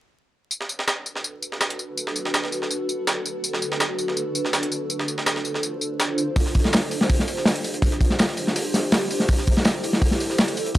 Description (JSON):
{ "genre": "drum and bass, jungle", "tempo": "164 BPM", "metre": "4/4", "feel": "straight", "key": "B phrygian", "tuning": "A4 = 440 Hz", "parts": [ { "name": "granular cloud pad", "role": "sustained chords", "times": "1.5-10.8 s", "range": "D4 to C5", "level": "-27 LUFS", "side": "right 1 dB", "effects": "built-in reverb" }, { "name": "breakbeat sampler-style drum kit", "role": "drums", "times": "0.5-10.8 s", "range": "hi-hat, snare drum, tambourine", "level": "-25 LUFS", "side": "equal", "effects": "high-pass filter on perc, high-pass filter on snare, high-pass filter on hats" }, { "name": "crunchy breakbeat drum kit", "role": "drums", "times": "6.4-10.8 s", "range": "hi-hat, kick drum, snare drum", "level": "-20 LUFS", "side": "equal", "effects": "none" } ], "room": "light reverb, small room ambience", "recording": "dry, gritty hardware recording, transformer saturation, vinyl crackle", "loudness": "-21 LUFS", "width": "side -15 dB against mid", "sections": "0.5-10.8 A section", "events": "none", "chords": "0.5 Bm7; 4.9 Dm7; 8.6 Am7", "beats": "| 0.51 0.88 1.24 1.61 | 1.97 2.34 2.71 3.07 | 3.44 3.80 4.17 4.54 | 4.90 5.27 5.63 6.00 | 6.36 6.73 7.10 7.46 | 7.83 8.19 8.56 8.93 | 9.29 9.66 10.02 10.39 | 10.76" }